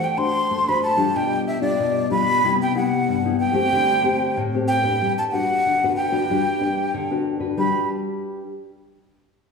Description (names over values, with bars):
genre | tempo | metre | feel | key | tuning
samba | 93 BPM | 4/4 | straight | G major | A4 = 438 Hz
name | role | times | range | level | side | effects
breathy jazz flute | melody | 0.0-7.9 s | D5 to C6 | -21 LUFS | right 1 dB | none
nylon-string guitar | accompaniment | 0.0-8.4 s | G2 to C5 | -22 LUFS | left 4 dB | none
room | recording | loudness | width
wet large studio reverb, RT60 1.4 s | heard from further back in the room, small room reverb | -18 LUFS | side -4 dB against mid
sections
0.0-7.6 A section; 7.6-9.5 B section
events
none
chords
0.0 D7/A; 1.1 G7/B; 2.4 Cmaj7; 3.7 D7sus4; 5.0 Gmaj7